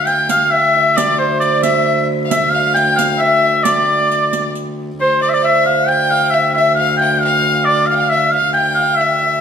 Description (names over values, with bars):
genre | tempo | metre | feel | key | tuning
medieval dance | 134 BPM | 3/4 | straight | D minor | A4 = 444 Hz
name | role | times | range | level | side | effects
clear shawm | melody | 0.0-9.4 s | C5 to G5 | -14 LUFS | equal | none
clear fiddle | second line | 0.0-9.4 s | C5 to G5 | -22 LUFS | left 6 dB | none
concert harp | second line | 0.0-9.4 s | C5 to G5 | -20 LUFS | right 3 dB | none
rich viola da gamba | drone | 0.0-9.4 s | D2 | -22 LUFS | equal | none
riq | percussion | 0.1-4.7 s | none | -25 LUFS | right 6 dB | none
room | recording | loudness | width
moderate recital hall reverb, RT60 1.3 s | none | -12 LUFS | side -7 dB against mid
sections
0.0-5.0 A section; 5.0-9.4 B section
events
none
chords
none